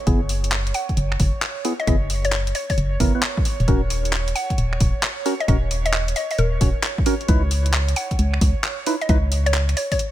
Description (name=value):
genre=UK garage, two-step garage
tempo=133 BPM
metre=4/4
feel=swing 65% on 16ths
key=unclear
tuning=A4 = 444 Hz
part: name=airy breathy pad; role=sustained chords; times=0.0-10.1 s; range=C#5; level=-33 LUFS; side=right 4 dB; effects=chorus, vintage 12-bit sampler grit, sidechain pumping
part: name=percussive organ stab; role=stabs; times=0.1-9.2 s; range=B3 to C#5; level=-26 LUFS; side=right 1 dB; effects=chorus, dub echo
part: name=organ-like FM bass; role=bass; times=0.1-9.7 s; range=D#1 to C#2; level=-20 LUFS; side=equal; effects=tube saturation
part: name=electronic kick drum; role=drums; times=0.1-10.0 s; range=none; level=-21 LUFS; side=equal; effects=studio reverb
part: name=garage drum kit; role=drums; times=0.1-10.1 s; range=finger snaps, handclaps, hi-hat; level=-25 LUFS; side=left 1 dB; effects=studio reverb
part: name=mallet-like synth pluck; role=melody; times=0.7-10.0 s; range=A#4 to F#5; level=-27 LUFS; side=left 1 dB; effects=chorus, dub echo
room=little or no reverb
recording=none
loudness=-18 LUFS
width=side -13 dB against mid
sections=0.0-10.1 A section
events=filter sweep on synth stab 0.0-10.1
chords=0.0 F#7sus4; 3.5 D#m7; 7.3 C#m9